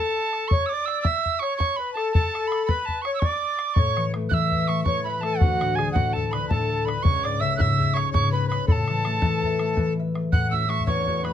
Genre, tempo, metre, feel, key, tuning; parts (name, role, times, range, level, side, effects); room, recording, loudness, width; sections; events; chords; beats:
celtic folk, Celtic slip jig; 110 BPM (dotted quarters); 9/8; straight; A major; A4 = 440 Hz
mellow tin whistle; melody; 0.0-11.3 s; F#5 to F#6; -26 LUFS; right 6 dB
accordion; second line; 0.0-11.3 s; F#4 to F#5; -28 LUFS; left 4 dB
concert harp; accompaniment; 0.0-0.4, 3.8-11.3 s; C#2 to E5; -25 LUFS; left 3 dB
bodhran; percussion; 0.3-11.3 s; -23 LUFS; left 1 dB
light reverb; close, detailed microphones; -21 LUFS; side -10 dB against mid
0.0-10.3 A section; 10.3-11.3 B section
0.0 N.C.; 3.8 A; 5.4 D; 7.0 C#m; 8.7 A5; 10.3 A6
| 0.50 1.04 1.59 | 2.13 2.68 3.22 | 3.77 4.31 4.86 | 5.41 5.95 6.50 | 7.04 7.59 8.13 | 8.68 9.23 9.78 | 10.32 10.87